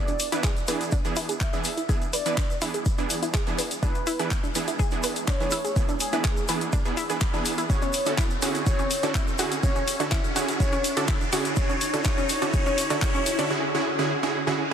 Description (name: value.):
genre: progressive house.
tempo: 124 BPM.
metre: 4/4.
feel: straight.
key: E mixolydian.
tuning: A4 = 440 Hz.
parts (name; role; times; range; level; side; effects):
warm velvety synth lead; melody; 0.0-13.5 s; G#4 to E5; -32 LUFS; equal; chorus, sidechain pumping, dub echo.
supersaw stab; stabs; 0.0-14.7 s; D3 to B4; -28 LUFS; right 2 dB; sidechain pumping, dub echo.
riser and reverse cymbal; sound effects; 1.9-14.7 s; none; -34 LUFS; equal; none.
analog pluck; arpeggios; 0.1-13.4 s; C#4 to B4; -32 LUFS; equal; chorus, sidechain pumping, dub echo.
round analog bass; bass; 0.1-13.5 s; none; barely audible; none; none.
deep house drum kit; drums; 0.1-13.5 s; handclaps, hi-hat; -32 LUFS; left 3 dB; overdrive, sidechain pumping on hats.
tube shaker; percussion; 0.1-13.5 s; none; -36 LUFS; right 2 dB; none.
electronic kick drum; drums; 0.4-13.1 s; none; -26 LUFS; equal; overdrive.
room: moderate huge ambient reverb, RT60 4.5 s.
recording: dense, heavily limited modern master.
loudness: -22 LUFS.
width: side -8 dB against mid.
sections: 0.0-14.7 A section.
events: build-up 0.0-14.7; filter sweep on synth pluck 0.0-14.7; riser 1.9-13.5; reverse cymbal 14.6.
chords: 0.0 E7; 7.7 Dmaj9#11; 11.6 Bm7.